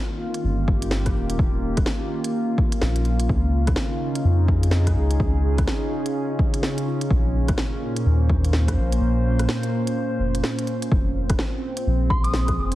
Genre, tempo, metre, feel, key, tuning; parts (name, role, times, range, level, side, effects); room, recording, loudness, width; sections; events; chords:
future garage; 126 BPM; 4/4; swing 62% on 16ths; A4 = 441 Hz
warbly tape-like pad; sustained chords; 0.0-12.8 s; Bb2 to C5; -26 LUFS; equal; chorus, built-in reverb, sidechain pumping
organic electronic drum kit; drums; 0.3-12.8 s; hi-hat, rim click, snare drum; -29 LUFS; equal; overdrive, studio reverb
warm sub bass; bass; 0.4-12.8 s; Eb1 to F2; -21 LUFS; equal; tube saturation, sidechain pumping
electronic kick drum; drums; 0.7-12.6 s; -23 LUFS; equal; studio reverb
soft synth bell; melody; 12.1-12.5 s; C6 to Eb6; -26 LUFS; equal; chorus, vintage 12-bit sampler grit, tape echo
light reverb; heavily compressed radio sound, multiband compression, cassette tape; -20 LUFS; side -15 dB against mid
0.0-12.8 A section
break 9.0-10.9
0.0 Eb7; 3.3 Dbadd9; 7.1 Bbmadd9; 10.9 Fm